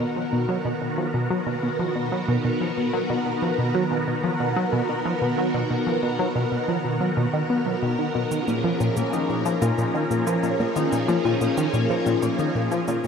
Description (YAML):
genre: ambient, sequencer-driven space music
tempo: 92 BPM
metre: 4/4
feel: straight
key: B lydian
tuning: A4 = 435 Hz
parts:
  - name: phased string machine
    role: sustained chords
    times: 0.0-13.1 s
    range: D#3 to A#4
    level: -25 LUFS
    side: equal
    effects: ensemble chorus, phaser
  - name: tight sequenced synth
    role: riff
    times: 0.0-13.1 s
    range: A#2 to B3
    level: -24 LUFS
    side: equal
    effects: chorus, ping-pong delay
  - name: shaker and congas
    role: percussion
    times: 8.3-13.1 s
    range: none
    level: -34 LUFS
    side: right 3 dB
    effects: ping-pong delay
  - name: concert harp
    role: arpeggios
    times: 8.5-13.1 s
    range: A#3 to A#4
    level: -29 LUFS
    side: moving between left 7 dB and left 1 dB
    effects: auto-pan, ping-pong delay
room: wet shimmer reverb, RT60 7.0 s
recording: none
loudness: -21 LUFS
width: side -6 dB against mid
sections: 0.0-13.1 A section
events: fade-out 11.8-13.1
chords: 0.0 Bmaj7; 8.3 A#m7